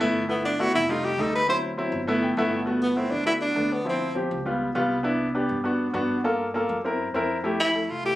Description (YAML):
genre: Afro-Cuban jazz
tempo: 201 BPM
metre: 4/4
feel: straight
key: G major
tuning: A4 = 440 Hz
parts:
  - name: warm baby grand piano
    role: accompaniment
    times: 0.0-8.2 s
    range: F3 to G5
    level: -25 LUFS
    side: equal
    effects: none
  - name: upright bass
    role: bass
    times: 0.0-8.2 s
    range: F1 to G2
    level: -33 LUFS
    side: equal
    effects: none
  - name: clear tenor saxophone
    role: melody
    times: 0.3-4.2, 7.6-8.2 s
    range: B3 to C5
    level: -24 LUFS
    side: equal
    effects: none
room: moderate club reverb, RT60 0.6 s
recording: recorded on a phone in the room, club reverb, compression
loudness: -22 LUFS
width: side -15 dB against mid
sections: 0.0-2.7 A section; 2.7-8.2 B section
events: tenor saxophone solo 0.0-2.7; grand piano fill 2.1-2.7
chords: 0.0 G6; 0.9 F7; 1.5 D7; 2.1 G6; 2.7 Gmaj7; 3.9 Dm7; 4.5 C#7#11; 5.1 Cmaj7; 6.2 Gm7; 6.8 F#7#11; 7.4 Fmaj7